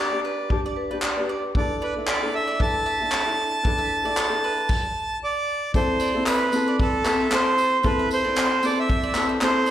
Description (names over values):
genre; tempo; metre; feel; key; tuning
acoustic pop; 114 BPM; 4/4; swing 55% on 16ths; A minor; A4 = 438 Hz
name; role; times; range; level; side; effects
accordion; melody; 0.0-9.7 s; A4 to A5; -23 LUFS; right 2 dB; plate reverb, slapback echo, digital delay
ukulele; accompaniment; 0.0-9.7 s; C4 to D5; -26 LUFS; left 2 dB; plate reverb, slapback echo
mandolin; arpeggios; 0.2-9.7 s; B4 to E5; -34 LUFS; right 4 dB; plate reverb, slapback echo
unplugged drum kit; drums; 0.5-9.7 s; crash cymbal, handclaps, kick drum, tambourine; -26 LUFS; equal; none
vibraphone with medium mallets; second line; 0.8-1.5 s; B4 to D5; -34 LUFS; left 2 dB; plate reverb
tambourine; percussion; 5.7-9.7 s; none; -43 LUFS; left 4 dB; none
room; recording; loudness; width
moderate club reverb, RT60 0.6 s; live gig heard through the venue's PA, recital hall reverb; -20 LUFS; side -11 dB against mid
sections
0.0-5.7 A section; 5.7-9.7 B section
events
stop 4.7-5.7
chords
0.0 G; 1.5 E7sus4; 5.7 Amadd9